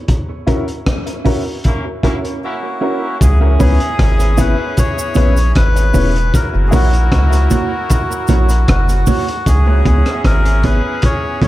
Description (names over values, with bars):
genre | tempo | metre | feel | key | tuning
dub reggae | 77 BPM | 4/4 | straight | C# dorian | A4 = 440 Hz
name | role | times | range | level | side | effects
crunchy breakbeat drum kit | drums | 0.1-11.5 s | hi-hat, kick drum, rim click | -16 LUFS | equal | none
mellow electric guitar | accompaniment | 0.5-11.5 s | A#3 to C#5 | -22 LUFS | right 4 dB | spring reverb, dub echo
dark upright piano | stabs | 0.5-6.9 s | C#4 to B4 | -24 LUFS | left 4 dB | dub echo
clear horn section | second line | 1.6-11.5 s | A#3 to A#4 | -25 LUFS | right 1 dB | dub echo
melodica | melody | 2.4-11.5 s | F#4 to C#5 | -21 LUFS | left 2 dB | dub echo
soft dub sub bass | bass | 3.2-11.5 s | E1 to C#2 | -12 LUFS | equal | none
cabasa | percussion | 3.2-9.7 s | none | -30 LUFS | right 6 dB | none
room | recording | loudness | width
small room reverb | echo-heavy mix | -12 LUFS | side -16 dB against mid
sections
0.0-3.2 A section; 3.2-11.5 B section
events
band accent 0.1-3.2; break 2.4-3.2; part muted 9.5-11.5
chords
0.1 F#7; 3.2 C#m7; 6.3 F#7; 9.5 C#m7